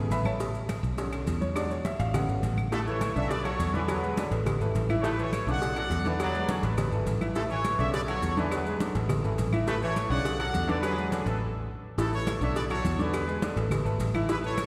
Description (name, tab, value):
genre	latin, salsa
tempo	207 BPM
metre	4/4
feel	straight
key	A major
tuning	A4 = 442 Hz
part	bright upright piano	accompaniment	0.0-14.7 s	C#3 to B5	-35 LUFS	equal	none
part	fingered electric bass	bass	0.0-14.7 s	G#1 to E2	-33 LUFS	equal	none
part	congas	percussion	0.1-14.7 s	none	-38 LUFS	equal	none
part	cowbell	percussion	0.1-14.7 s	none	-40 LUFS	equal	none
part	maracas	percussion	0.1-14.7 s	none	-52 LUFS	equal	none
part	claves	percussion	0.3-14.7 s	none	-48 LUFS	equal	none
part	bright trumpet section	melody	2.7-14.7 s	E4 to F#5	-36 LUFS	equal	none
part	bright trombone section	second line	2.7-11.3 s	C#3 to A3	-38 LUFS	equal	none
room	wet concert hall reverb, RT60 2.3 s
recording	heard from further back in the room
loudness	-28 LUFS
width	mono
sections	0.0-2.7 A section; 2.7-12.0 B section; 12.0-14.7 B section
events	upright piano solo 0.0-2.7; stop 11.4-12.0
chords	0.0 Aadd9; 1.0 Bm7; 1.6 E7; 2.1 Aadd9; 3.3 Bm7; 3.9 E7; 4.5 Aadd9; 5.6 Bm7; 6.2 E7; 6.8 Aadd9; 7.9 Bm7; 8.5 E7; 9.1 Aadd9; 10.3 Bm7; 10.8 E7; 11.4 A5; 12.0 Aadd9; 12.6 Bm7; 13.1 E7; 13.7 Aadd9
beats	0.11 | 0.40 0.69 0.98 1.27 | 1.56 1.85 2.14 2.43 | 2.72 3.01 3.30 3.59 | 3.88 4.17 4.46 4.75 | 5.04 5.33 5.62 5.91 | 6.20 6.49 6.78 7.07 | 7.36 7.65 7.94 8.23 | 8.52 8.80 9.09 9.38 | 9.67 9.96 10.25 10.54 | 10.83 11.12 11.41 11.70 | 11.98 12.27 12.56 12.85 | 13.14 13.43 13.71 14.00 | 14.29 14.58